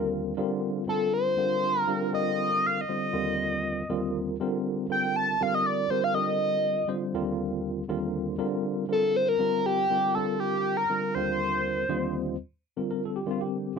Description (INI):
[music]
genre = jazz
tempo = 120 BPM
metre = 4/4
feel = straight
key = unclear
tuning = A4 = 436 Hz
[part]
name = overdriven synth lead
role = melody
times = 0.0-12.1 s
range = G4 to A5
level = -26 LUFS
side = equal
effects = distortion, phaser, slapback echo
[part]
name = tine electric piano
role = accompaniment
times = 0.0-13.8 s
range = Eb2 to Eb5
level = -29 LUFS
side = equal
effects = overdrive, fast stereo tremolo, lush chorus
[sound]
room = light reverb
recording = dry, close 1970s-style studio recording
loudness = -25 LUFS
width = side -6 dB against mid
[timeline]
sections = 0.0-12.4 A section; 12.4-13.8 B section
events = tine electric piano fill 11.6-12.4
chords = 0.4 Bbadd9; 3.1 Cm11/Eb; 4.4 Bbadd9; 7.1 Cm11/Eb; 8.4 Bbadd9; 11.1 Cm11/Eb; 12.4 Csus2